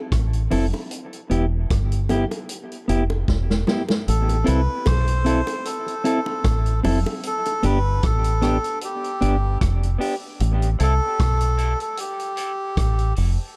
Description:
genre	dub reggae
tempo	76 BPM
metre	4/4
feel	swing 55% on 16ths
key	A minor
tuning	A4 = 439 Hz
part	deep dub fingered electric bass	bass	0.1-13.4 s	E1 to C2	-23 LUFS	equal	none
part	vintage drum kit	drums	0.1-13.4 s	hi-hat, kick drum, rim click, snare drum	-28 LUFS	equal	none
part	mellow electric guitar	accompaniment	0.5-13.3 s	B3 to A4	-29 LUFS	equal	high-pass filter, dub echo
part	bongos	percussion	0.5-7.6 s	none	-34 LUFS	equal	high-pass filter on perc, dub echo
part	melodica	melody	4.1-13.1 s	G4 to C5	-28 LUFS	equal	dub echo
room	small room reverb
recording	dark, warm production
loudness	-22 LUFS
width	mono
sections	0.0-4.1 A section; 4.1-13.6 B section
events	drum fill 3.3-4.1; part muted 7.2-13.6; filter sweep 7.2-13.6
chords	0.0 Am; 0.9 Em; 4.1 Am; 7.2 G; 10.4 Am

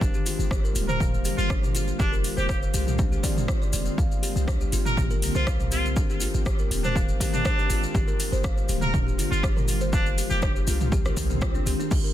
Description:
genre	afro house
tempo	121 BPM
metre	4/4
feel	straight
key	unclear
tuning	A4 = 439 Hz
part	ethereal airy pad	sustained chords	0.1-12.1 s	D3 to G4	-32 LUFS	left 1 dB	ensemble chorus, built-in reverb, sidechain pumping
part	kalimba	arpeggios	0.0-12.1 s	D4 to F5	-33 LUFS	left 1 dB	vintage 12-bit sampler grit, sidechain pumping, digital delay
part	warm 808-style bass	bass	0.0-12.0 s	D1 to C2	-28 LUFS	equal	sidechain pumping
part	electronic kick drum	drums	0.0-12.0 s	none	-26 LUFS	equal	overdrive
part	maracas	percussion	0.0-12.1 s	none	-37 LUFS	left 4 dB	none
part	house drum kit	drums	0.3-12.0 s	crash cymbal, hi-hat, rim click, toms	-32 LUFS	right 1 dB	overdrive
part	trumpet with straight mute	melody	0.9-10.5 s	D4 to Bb4	-31 LUFS	right 1 dB	digital delay
part	swell	sound effects	11.1-11.9 s	none	-36 LUFS	left 3 dB	none
part	congas	percussion	11.9-12.0 s	none	-37 LUFS	right 2 dB	none
room	little or no reverb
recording	dense, heavily limited modern master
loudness	-22 LUFS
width	side -12 dB against mid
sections	0.0-12.1 A section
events	swell 11.1-11.9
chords	0.0 Gm7; 2.0 Fm7; 4.0 Csus2; 6.0 Abmaj7; 7.9 Gm7; 9.9 Fm7

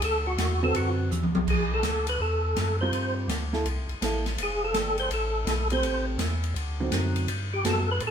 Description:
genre	soul jazz organ trio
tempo	165 BPM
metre	4/4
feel	swing 65% on 8ths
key	unclear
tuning	A4 = 438 Hz
part	percussive tonewheel organ	melody	0.0-8.1 s	F#4 to C5	-28 LUFS	equal	slow rotary speaker, chorus vibrato
part	tonewheel organ	bass	0.0-8.1 s	F1 to A2	-29 LUFS	equal	slow rotary speaker
part	open jazz drum kit	drums	0.0-8.1 s	crash cymbal, hi-hat, kick drum, ride cymbal, snare drum, toms	-31 LUFS	equal	none
part	hollow-body jazz guitar	accompaniment	0.6-7.9 s	D3 to B4	-30 LUFS	right 3 dB	none
room	moderate stone room reverb, RT60 1.2 s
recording	band playing live in one room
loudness	-24 LUFS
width	side -8 dB against mid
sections	0.0-1.5 A section; 1.5-8.1 A section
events	tonewheel organ solo 0.0-8.1; drum fill 1.1-1.5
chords	0.0 D13; 1.5 Bm7; 2.9 Gm11; 3.7 C6; 4.4 Fadd9; 5.8 Am7; 6.6 D7b9; 7.3 Gmaj9

